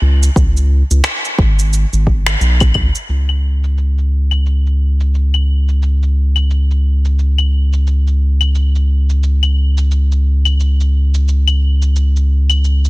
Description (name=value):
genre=organic downtempo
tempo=88 BPM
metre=4/4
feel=swing 59% on 16ths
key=unclear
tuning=A4 = 439 Hz
part: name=round analog bass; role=bass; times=0.0-12.9 s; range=G#1 to C#2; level=-12 LUFS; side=equal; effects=sidechain pumping
part: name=electronic shaker, finger snaps and claves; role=drums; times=0.2-12.9 s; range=none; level=-20 LUFS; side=left 3 dB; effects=low-pass filter on perc, soft clipping on snare, low-pass filter on snare
part: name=electronic kick drum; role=drums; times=0.4-2.9 s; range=none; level=-13 LUFS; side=equal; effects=none
room=digital ambience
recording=dense, heavily limited modern master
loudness=-12 LUFS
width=side -21 dB against mid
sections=0.0-3.1 A section; 3.1-12.9 B section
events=none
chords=none